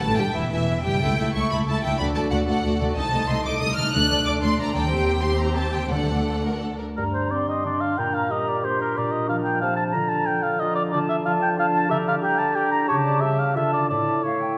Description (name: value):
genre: classical, dramatic, fast romantic movement for symphony orchestra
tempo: 182 BPM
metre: 3/4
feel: rubato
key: G minor, D minor from 10.9 s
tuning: A4 = 440 Hz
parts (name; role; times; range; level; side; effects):
- clear symphonic violin section; melody; 0.0-6.6 s; E5 to F#6; -28 LUFS; equal; none
- warm symphonic violin section; second line; 0.0-6.9 s; E4 to E5; -33 LUFS; equal; none
- warm symphonic viola section; accompaniment; 0.0-6.8 s; E3 to G4; -30 LUFS; equal; none
- concert harp; arpeggios; 0.0-14.6 s; G2 to D5; -32 LUFS; equal; none
- rich symphonic cello section; bass; 0.0-6.8 s; C2 to A2; -32 LUFS; equal; none
- warm symphonic double bass section; bass; 0.0-6.8 s; E1 to Eb2; -31 LUFS; equal; none
- timpani; percussion; 0.0-6.4 s; D3; -38 LUFS; equal; none
- mellow oboe; second line; 7.0-14.6 s; Bb4 to Bb5; -26 LUFS; equal; none
- mellow small flute group; second line; 7.0-14.6 s; F5 to C6; -31 LUFS; equal; none
- warm clarinet; second line; 7.0-14.6 s; C4 to G4; -33 LUFS; equal; none
- dark bassoon; accompaniment; 7.0-14.6 s; A2 to G3; -32 LUFS; equal; none
room: wet concert hall reverb, RT60 2.0 s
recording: none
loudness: -23 LUFS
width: mono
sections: 0.0-7.0 A section; 7.0-14.6 B section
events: none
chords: 0.0 Em7; 1.0 A7/C#; 2.0 D; 3.0 Adim/C; 3.9 D; 4.9 Cm/Eb; 5.9 D; 7.0 Gm; 8.0 Gm/Bb; 9.0 Bb; 9.9 Bb/D; 10.9 Dm; 11.9 Em7b5/D; 12.9 A7/C#; 13.6 Dm; 13.9 A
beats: | 0.02 0.35 0.68 | 1.01 1.34 1.67 | 1.99 2.32 2.64 | 2.96 3.29 3.61 | 3.94 4.26 4.58 | 4.91 5.23 5.57 | 5.92 6.27 6.62 | 6.97 7.30 7.64 | 7.97 8.30 8.63 | 8.96 9.29 9.61 | 9.94 10.27 10.60 | 10.93 11.26 11.58 | 11.90 12.23 12.55 | 12.88 13.22 13.55 | 13.90 14.24